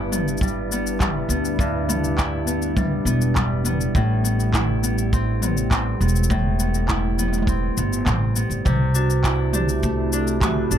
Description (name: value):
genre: folktronica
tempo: 102 BPM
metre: 4/4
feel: straight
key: unclear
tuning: A4 = 439 Hz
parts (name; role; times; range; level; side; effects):
- warbly tape-like pad; sustained chords; 0.0-10.8 s; A2 to D5; -29 LUFS; right 1 dB; chorus, built-in reverb, plate reverb
- Celtic harp; arpeggios; 0.0-10.8 s; G2 to E4; -25 LUFS; left 2 dB; tape echo, plate reverb
- upright bass; bass; 0.0-10.8 s; E1 to D2; -23 LUFS; right 1 dB; none
- organic electronic drum kit; drums; 0.1-10.8 s; handclaps, shaker, toms; -26 LUFS; equal; overdrive
- kick drum; drums; 0.4-10.5 s; none; -25 LUFS; equal; none
- vibraphone with medium mallets; second line; 9.0-10.8 s; F#4 to G4; -26 LUFS; right 6 dB; tape echo, plate reverb
room: light reverb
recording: none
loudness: -19 LUFS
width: side -9 dB against mid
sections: 0.0-10.8 A section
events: none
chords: 0.0 G6; 3.9 Am9; 8.7 C69